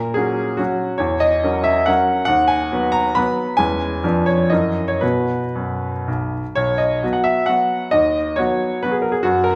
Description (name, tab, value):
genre	classical, romantic triple-time dance for piano with dotted rhythms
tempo	111-148 BPM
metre	3/4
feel	rubato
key	B major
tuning	A4 = 438 Hz
part	bright baby grand piano	solo	0.0-9.6 s	B1 to B5	-19 LUFS	equal	none
room	wet recital hall reverb, RT60 1.7 s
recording	none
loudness	-19 LUFS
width	mono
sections	0.0-6.6 A section; 6.6-9.6 A section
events	none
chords	0.0 F#/A#; 1.0 F#7/E; 2.3 B/D#; 3.6 C#m7/E; 4.0 Fdim7; 4.5 F#7; 5.0 B5; 7.9 B/D#